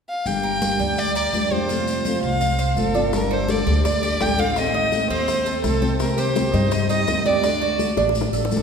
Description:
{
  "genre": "latin, Cuban son and guajira",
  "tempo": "167 BPM",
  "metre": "4/4",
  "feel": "straight",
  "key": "G minor",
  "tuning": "A4 = 444 Hz",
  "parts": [
    { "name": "warm violin", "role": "melody", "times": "0.1-8.6 s", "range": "A4 to G5", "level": "-23 LUFS", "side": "equal", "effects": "none" },
    { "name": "nylon-string guitar", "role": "accompaniment", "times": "0.3-8.6 s", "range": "C3 to A4", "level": "-26 LUFS", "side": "left 2 dB", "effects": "none" },
    { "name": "upright bass", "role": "bass", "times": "0.3-8.6 s", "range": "G1 to G2", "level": "-25 LUFS", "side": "left 1 dB", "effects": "none" },
    { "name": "congas", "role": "percussion", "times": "0.3-8.6 s", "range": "none", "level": "-30 LUFS", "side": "equal", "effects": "none" },
    { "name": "maracas", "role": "percussion", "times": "0.3-8.6 s", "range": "none", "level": "-34 LUFS", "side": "left 2 dB", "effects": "none" },
    { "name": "Cuban tres", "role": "arpeggios", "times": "0.4-8.6 s", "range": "C4 to F5", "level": "-26 LUFS", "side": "right 6 dB", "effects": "none" },
    { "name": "bongos", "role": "percussion", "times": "3.1-8.6 s", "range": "none", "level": "-31 LUFS", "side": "left 5 dB", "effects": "none" }
  ],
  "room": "wet concert hall reverb, RT60 2.5 s",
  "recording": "recorded in a church or concert hall",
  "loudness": "-18 LUFS",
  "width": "side -6 dB against mid",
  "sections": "0.3-3.1 A section; 3.1-8.6 B section",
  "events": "drum fill 8.0-8.6",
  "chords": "0.3 Gm; 1.7 F; 3.1 Gmadd9; 4.6 Adim; 6.0 Cm7; 7.4 D",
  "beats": "| 0.26 0.62 0.98 1.34 | 1.69 2.05 2.41 2.77 | 3.13 3.49 3.85 4.20 | 4.56 4.92 5.28 5.64 | 6.00 6.36 6.71 7.07 | 7.43 7.79 8.15 8.51"
}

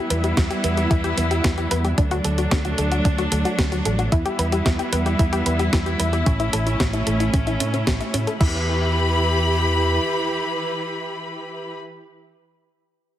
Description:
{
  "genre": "italo disco",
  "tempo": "112 BPM",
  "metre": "4/4",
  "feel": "straight",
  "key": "E dorian",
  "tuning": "A4 = 440 Hz",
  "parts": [
    { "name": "rich studio string section", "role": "sustained chords", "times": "0.0-11.8 s", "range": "E3 to B5", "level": "-23 LUFS", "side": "equal", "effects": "none" },
    { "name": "analog pluck", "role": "arpeggios", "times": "0.0-8.7 s", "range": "C#4 to E5", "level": "-27 LUFS", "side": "left 2 dB", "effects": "chorus, ping-pong delay" },
    { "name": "fingered electric bass with an envelope filter", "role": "bass", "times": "0.1-10.0 s", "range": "A1 to A2", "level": "-24 LUFS", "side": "equal", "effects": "tube saturation" },
    { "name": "clean 12-bit digital drum machine", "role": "drums", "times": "0.1-8.5 s", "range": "crash cymbal, hi-hat, snare drum", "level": "-27 LUFS", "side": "equal", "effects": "overdrive" },
    { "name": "electronic kick drum", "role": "drums", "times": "0.4-8.5 s", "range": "none", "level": "-20 LUFS", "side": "equal", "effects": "overdrive" }
  ],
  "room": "light reverb, digital ambience",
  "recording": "heavily compressed radio sound, multiband compression",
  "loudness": "-18 LUFS",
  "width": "side -12 dB against mid",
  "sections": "0.0-8.4 A section; 8.4-12.7 B section",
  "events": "filter sweep on synth arpeggio sound 0.0-8.4",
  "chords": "0.0 Em; 2.0 D; 4.1 Em; 6.3 A; 8.4 Em",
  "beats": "0.37 0.91 1.44 | 1.98 2.51 3.05 3.58 | 4.12 4.66 5.19 5.73 | 6.26 6.80 7.33 7.87 | 8.41 8.94 9.48 10.01 | 10.55 11.09 11.62"
}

